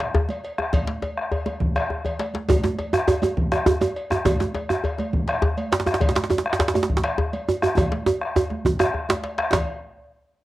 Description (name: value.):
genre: west african traditional, West African drum ensemble.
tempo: 136 BPM (dotted quarters).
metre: 12/8.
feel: straight.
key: none.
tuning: none.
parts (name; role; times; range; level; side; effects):
bombo; percussion; 0.0-9.7 s; none; -26 LUFS; left 1 dB; none.
cowbell; percussion; 0.0-9.7 s; none; -32 LUFS; left 1 dB; none.
djembe; percussion; 0.0-9.7 s; none; -26 LUFS; left 2 dB; none.
congas; percussion; 0.3-9.7 s; none; -31 LUFS; right 2 dB; none.
djembe; percussion; 2.5-9.7 s; none; -21 LUFS; right 3 dB; none.
room: moderate studio reverb, RT60 0.5 s.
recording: home recording on cassette.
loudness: -20 LUFS.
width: side -16 dB against mid.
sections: 0.0-9.5 A section.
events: drum fill 1.8-2.5, 7.8-9.5.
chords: none.